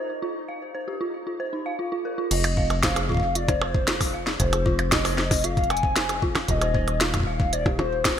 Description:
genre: IDM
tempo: 115 BPM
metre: 4/4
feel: straight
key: F dorian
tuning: A4 = 440 Hz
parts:
  - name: dark detuned synth bell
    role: arpeggios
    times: 0.0-8.1 s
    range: Eb4 to F5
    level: -30 LUFS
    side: right 1 dB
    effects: chorus, ping-pong delay
  - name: pulsing gated texture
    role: texture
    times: 0.0-2.3 s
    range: Eb4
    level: -43 LUFS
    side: right 2 dB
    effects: chorus, built-in reverb
  - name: warbly nostalgic lead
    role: melody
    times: 2.3-8.2 s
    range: C5 to Ab5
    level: -28 LUFS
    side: left 1 dB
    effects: analog chorus, ping-pong delay
  - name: deep acid bass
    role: bass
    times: 2.3-8.2 s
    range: Eb1 to F1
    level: -28 LUFS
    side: equal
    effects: none
  - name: glitchy drum kit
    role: drums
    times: 2.3-8.2 s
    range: crash cymbal, hi-hat, percussion blips, snare drum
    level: -25 LUFS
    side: equal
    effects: overdrive, gated reverb
  - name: electronic kick drum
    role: drums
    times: 2.6-8.2 s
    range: none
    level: -26 LUFS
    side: equal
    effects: none
room: light reverb, digital ambience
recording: bright 1980s-style digital production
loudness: -22 LUFS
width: side -9 dB against mid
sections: 0.0-2.3 A section; 2.3-8.2 B section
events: none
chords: 0.0 N.C.; 2.3 F7(no3); 6.5 N.C.

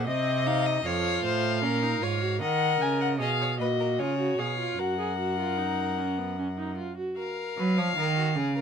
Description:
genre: classical, baroque-style fugue for string quartet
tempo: 76 BPM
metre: 3/4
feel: straight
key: F# major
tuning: A4 = 442 Hz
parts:
  - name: dark violin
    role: melody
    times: 0.0-8.6 s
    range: C#5 to G#5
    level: -30 LUFS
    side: left 8 dB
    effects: none
  - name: rich violin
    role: second line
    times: 0.0-8.6 s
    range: F#4 to F5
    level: -34 LUFS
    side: left 2 dB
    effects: none
  - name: warm viola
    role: accompaniment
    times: 0.0-7.2 s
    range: B3 to A#4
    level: -31 LUFS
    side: right 2 dB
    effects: none
  - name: rich cello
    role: bass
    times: 0.0-8.6 s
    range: F2 to F#3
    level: -29 LUFS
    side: right 3 dB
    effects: none
room: light reverb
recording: close, detailed microphones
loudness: -25 LUFS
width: side -7 dB against mid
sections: 0.0-7.2 A section; 7.2-8.6 B section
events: none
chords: 0.1 F7/C; 1.6 A#m; 2.4 D#m; 3.2 G#m7/B; 4.0 C#7; 4.8 F#

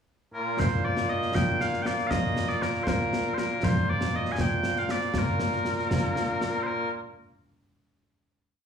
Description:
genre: scottish traditional, Scottish pipe music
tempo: 79 BPM (dotted quarters)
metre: 6/8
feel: straight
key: Bb major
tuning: A4 = 440 Hz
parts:
  - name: mellow small bagpipes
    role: melody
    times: 0.3-6.9 s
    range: Bb2 to Ab5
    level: -27 LUFS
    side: equal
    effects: slapback echo
  - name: concert snare drum and concert bass drum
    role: drums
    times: 0.6-6.5 s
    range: none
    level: -28 LUFS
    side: equal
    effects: none
room: light reverb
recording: live gig heard through the venue's PA, club reverb, small room ambience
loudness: -24 LUFS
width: side -7 dB against mid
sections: 0.0-0.6 pickup bar; 0.6-6.7 A section; 6.7-8.2 final note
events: none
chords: none

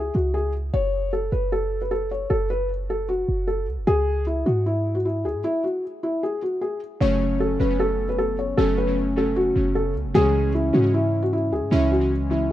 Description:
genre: hip hop, trap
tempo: 153 BPM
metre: 4/4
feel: half-time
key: F# minor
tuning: A4 = 438 Hz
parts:
  - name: felt-muted upright piano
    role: melody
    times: 0.0-12.5 s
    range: E4 to C#5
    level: -23 LUFS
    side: left 1 dB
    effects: none
  - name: clean 808-style bass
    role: bass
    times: 0.0-12.5 s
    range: F#1 to G#2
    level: -25 LUFS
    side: right 1 dB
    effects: none
  - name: glassy digital keys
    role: accompaniment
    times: 7.0-12.5 s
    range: C#3 to C#4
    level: -24 LUFS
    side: equal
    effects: chorus
room: little or no reverb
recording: rough home demo mix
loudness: -20 LUFS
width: side -13 dB against mid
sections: 0.0-7.0 A section; 7.0-12.5 B section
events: break 5.4-7.0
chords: 0.0 C#5; 0.7 F#5; 3.9 C#5; 7.0 F#m; 10.1 C#m

